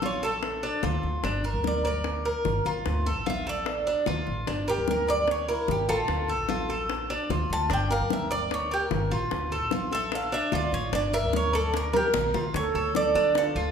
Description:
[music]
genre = latin, Cuban son and guajira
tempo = 149 BPM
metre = 4/4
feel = straight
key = unclear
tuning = A4 = 444 Hz
[part]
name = Cuban tres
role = arpeggios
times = 0.0-13.7 s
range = D4 to D5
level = -29 LUFS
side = equal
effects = none
[part]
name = upright bass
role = bass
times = 0.0-13.7 s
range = G1 to D3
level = -32 LUFS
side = equal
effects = none
[part]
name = bongos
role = percussion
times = 0.0-13.6 s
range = none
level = -32 LUFS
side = left 4 dB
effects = none
[part]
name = Cuban tres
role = melody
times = 0.1-13.7 s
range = E4 to A5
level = -29 LUFS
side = right 2 dB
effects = none
[part]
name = mellow concert flute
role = second line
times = 12.5-13.7 s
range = F4 to A4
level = -30 LUFS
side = right 6 dB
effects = none
[sound]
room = wet recital hall reverb, RT60 1.6 s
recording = recorded in a church or concert hall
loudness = -24 LUFS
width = side -7 dB against mid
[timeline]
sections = 0.0-12.5 A section; 12.5-13.7 B section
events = Cuban tres solo 0.0-12.5; drum fill 11.9-12.5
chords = 0.0 Dm; 1.2 Gm; 2.9 Dm; 4.5 Gm; 6.1 Dm; 7.7 Gm; 9.3 Dm; 10.9 Gm; 12.5 Dm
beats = 0.03 0.43 0.83 | 1.24 1.64 2.05 2.45 | 2.86 3.26 3.66 4.07 | 4.47 4.88 5.28 5.68 | 6.09 6.49 6.89 7.30 | 7.70 8.11 8.51 8.91 | 9.31 9.72 10.12 10.53 | 10.93 11.33 11.73 12.14 | 12.54 12.95 13.35

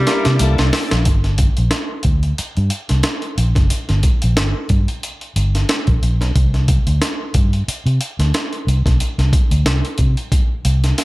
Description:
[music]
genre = funk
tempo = 91 BPM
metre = 4/4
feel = swing 56% on 16ths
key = G dorian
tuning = A4 = 440 Hz
[part]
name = raspy tenor saxophone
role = melody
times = 0.0-0.7 s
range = G3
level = -22 LUFS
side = equal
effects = analog delay
[part]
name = tonewheel organ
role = sustained chords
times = 0.0-1.0 s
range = Bb3 to A5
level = -28 LUFS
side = left 1 dB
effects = overdrive, chorus vibrato, slow rotary speaker
[part]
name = vintage muted fingered electric bass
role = bass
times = 0.0-10.9 s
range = F#1 to C3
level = -16 LUFS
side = equal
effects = none
[part]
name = clean electric guitar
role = accompaniment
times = 0.1-1.1 s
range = Bb3 to Bb4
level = -26 LUFS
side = left 6 dB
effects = wide subtle chorus
[part]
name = breakbeat sampler-style drum kit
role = drums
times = 0.1-11.0 s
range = hi-hat, kick drum, snare drum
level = -18 LUFS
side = equal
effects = none
[sound]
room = little or no reverb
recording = none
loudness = -14 LUFS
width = side -20 dB against mid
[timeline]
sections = 0.0-1.1 A section; 1.1-11.0 B section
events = drum fill 0.0-1.1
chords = 0.0 C13; 1.1 Gm; 6.4 N.C.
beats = 0.40 | 1.06 1.72 2.38 3.04 | 3.71 4.37 5.03 5.69 | 6.36 7.02 7.68 8.34 | 9.00 9.66 10.32 10.98

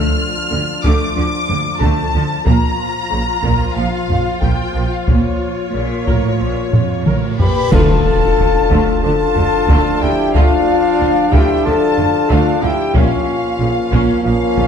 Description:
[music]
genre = cinematic, epic orchestral film score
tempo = 92 BPM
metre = 4/4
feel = straight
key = D harmonic minor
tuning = A4 = 444 Hz
[part]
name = warm symphonic violin section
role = melody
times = 0.0-14.7 s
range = Db5 to F6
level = -25 LUFS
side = left 3 dB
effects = none
[part]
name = rich symphonic violin section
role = second line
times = 0.0-14.7 s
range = Db5 to F6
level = -26 LUFS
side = left 2 dB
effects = none
[part]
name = clear symphonic viola section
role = accompaniment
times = 0.0-14.6 s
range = Db3 to Bb4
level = -23 LUFS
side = equal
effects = none
[part]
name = warm French horn section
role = sustained chords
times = 0.0-14.7 s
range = F3 to B4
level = -20 LUFS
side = left 7 dB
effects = none
[part]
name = rich symphonic cello section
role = bass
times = 0.5-14.6 s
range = F2 to D3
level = -24 LUFS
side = right 3 dB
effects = none
[part]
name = rich symphonic double bass section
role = bass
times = 0.5-14.6 s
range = Bb1 to D2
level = -21 LUFS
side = right 3 dB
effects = none
[part]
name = taiko ensemble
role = drums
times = 0.8-14.7 s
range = none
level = -17 LUFS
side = equal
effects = none
[part]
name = cymbal swell, clash cymbals and concert bass drum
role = percussion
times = 5.1-9.0 s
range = none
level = -23 LUFS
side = equal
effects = none
[part]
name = reverse cymbal and impact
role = sound effects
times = 7.5-10.3 s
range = none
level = -26 LUFS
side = left 1 dB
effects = none
[part]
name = hollow concert flute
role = second line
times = 7.4-14.7 s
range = F5 to B5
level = -24 LUFS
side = left 4 dB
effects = none
[part]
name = mellow trumpet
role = stabs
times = 7.4-14.7 s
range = Db4 to G4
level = -23 LUFS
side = right 3 dB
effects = none
[part]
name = bright trombone section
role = sustained chords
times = 7.7-14.7 s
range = F3 to D4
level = -22 LUFS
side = right 4 dB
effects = none
[part]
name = timpani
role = percussion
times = 7.7-8.7 s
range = D3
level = -22 LUFS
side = left 4 dB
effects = none
[sound]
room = wet scoring stage reverb, RT60 1.6 s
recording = dark, warm production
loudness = -13 LUFS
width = side -7 dB against mid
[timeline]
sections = 0.0-7.7 A section; 7.7-14.7 B section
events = drum fill 6.7-7.7; reverse cymbal 7.5; band accent 7.7-8.4; impact 7.7-10.3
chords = 0.0 Dm; 2.5 Bbm; 7.7 Dm; 12.9 Bbm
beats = 0.52 1.17 1.82 | 2.46 3.11 3.76 4.42 | 5.08 5.74 6.41 7.06 | 7.72 8.38 9.03 9.69 | 10.34 10.99 11.64 12.29 | 12.94 13.59 14.24

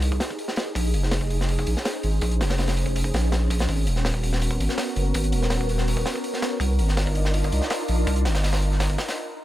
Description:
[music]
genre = drum and bass, jungle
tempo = 164 BPM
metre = 4/4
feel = straight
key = unclear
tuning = A4 = 440 Hz
[part]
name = soft string machine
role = sustained chords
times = 0.0-9.1 s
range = Cb4 to C5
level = -29 LUFS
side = equal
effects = ensemble chorus
[part]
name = saturated sub bass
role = bass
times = 0.0-9.0 s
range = Eb1 to C2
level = -22 LUFS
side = equal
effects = none
[part]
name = crunchy breakbeat drum kit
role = drums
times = 0.0-9.2 s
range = hi-hat, kick drum, snare drum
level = -29 LUFS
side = equal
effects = high-pass filter on kick, high-pass filter on hats, high-pass filter on snare, high-pass filter on room
[sound]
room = small room reverb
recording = none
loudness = -21 LUFS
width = side -14 dB against mid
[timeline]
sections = 0.0-9.4 A section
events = build-up 0.0-9.4; filter sweep on string machine 0.0-9.4; stop 9.2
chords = 0.0 Fm11 (rootless); 0.8 Bbm11; 3.7 Abm11; 6.6 Cm11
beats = 0.02 0.39 | 0.76 1.12 1.49 1.85 | 2.22 2.58 2.95 3.32 | 3.68 4.05 4.41 4.78 | 5.15 5.51 5.88 6.24 | 6.61 6.97 7.34 7.71 | 8.07 8.44 8.80

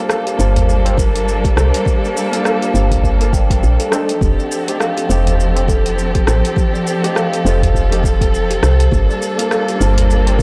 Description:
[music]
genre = organic downtempo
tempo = 102 BPM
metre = 4/4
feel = swing 59% on 16ths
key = G minor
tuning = A4 = 438 Hz
[part]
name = felt-muted upright piano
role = accompaniment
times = 0.0-10.4 s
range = A3 to A5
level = -28 LUFS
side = equal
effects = sidechain pumping, analog delay, shimmer reverb
[part]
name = dark chamber string section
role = sustained chords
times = 0.0-10.4 s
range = F3 to A4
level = -23 LUFS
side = equal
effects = sidechain pumping, shimmer reverb
[part]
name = kalimba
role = arpeggios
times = 0.1-10.4 s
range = D4 to G5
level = -24 LUFS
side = equal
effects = analog delay, shimmer reverb
[part]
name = deep house drum kit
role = drums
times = 0.1-10.4 s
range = hi-hat, rim click, shaker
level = -25 LUFS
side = equal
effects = overdrive
[part]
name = tabla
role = percussion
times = 0.3-10.4 s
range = none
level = -28 LUFS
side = equal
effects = none
[part]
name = woody FM bass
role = bass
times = 0.4-10.4 s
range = F1 to C2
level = -17 LUFS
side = equal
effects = none
[part]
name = electronic kick drum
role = drums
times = 1.0-10.4 s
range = none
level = -19 LUFS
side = equal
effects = overdrive
[sound]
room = little or no reverb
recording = dry, gritty hardware recording, cassette tape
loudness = -15 LUFS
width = mono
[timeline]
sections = 0.0-10.4 A section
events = none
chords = 0.0 Gm7; 4.2 F9; 8.9 Gm7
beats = 0.10 0.69 1.27 | 1.86 2.45 3.04 3.63 | 4.21 4.80 5.39 5.98 | 6.57 7.16 7.74 8.33 | 8.92 9.51 10.10

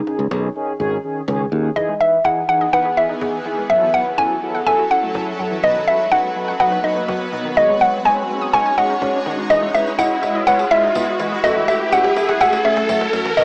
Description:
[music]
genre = dance-pop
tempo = 124 BPM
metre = 4/4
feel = straight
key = E major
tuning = A4 = 439 Hz
[part]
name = mallet-like synth pluck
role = melody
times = 0.0-13.4 s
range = D#4 to G#5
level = -16 LUFS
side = equal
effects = chorus, phaser, cassette tape, tape echo
[part]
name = mellow synth brass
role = accompaniment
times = 0.1-13.4 s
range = D#3 to E5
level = -23 LUFS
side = equal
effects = chorus, cassette tape
[part]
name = cajon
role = drums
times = 0.1-13.4 s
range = none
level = -31 LUFS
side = equal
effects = cassette tape
[part]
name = modern bright fingered electric bass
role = bass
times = 0.2-1.7 s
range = G#1 to D#2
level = -20 LUFS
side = equal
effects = none
[part]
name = shimmering ambient pad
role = sustained chords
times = 2.6-13.4 s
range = D#3 to C#5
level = -26 LUFS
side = equal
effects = chorus, built-in reverb, cassette tape
[part]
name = hollow square pluck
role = arpeggios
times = 1.8-13.4 s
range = F#2 to D#6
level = -28 LUFS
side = equal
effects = chorus, cassette tape, tape echo
[part]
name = riser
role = sound effects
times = 5.0-13.4 s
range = none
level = -24 LUFS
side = equal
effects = none
[part]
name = tambourine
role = percussion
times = 9.5-13.4 s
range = none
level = -38 LUFS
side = equal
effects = none
[sound]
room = moderate spring reverb, RT60 1.4 s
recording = home recording on cassette, small speaker sound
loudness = -15 LUFS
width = side -35 dB against mid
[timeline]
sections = 0.0-1.8 A section; 1.8-13.4 B section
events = build-up 1.8-13.4; drum fill 1.8-13.4; riser 5.0-13.4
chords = 0.0 C#sus2; 1.8 Emaj7; 3.7 F#m7; 5.6 B; 7.6 C#sus2; 9.5 Emaj7; 11.4 F#m7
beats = 0.31 0.80 1.28 | 1.76 2.25 2.73 3.21 | 3.70 4.18 4.67 5.15 | 5.63 6.12 6.60 7.08 | 7.57 8.05 8.54 9.02 | 9.50 9.99 10.47 10.96 | 11.44 11.92 12.41 12.89 | 13.38

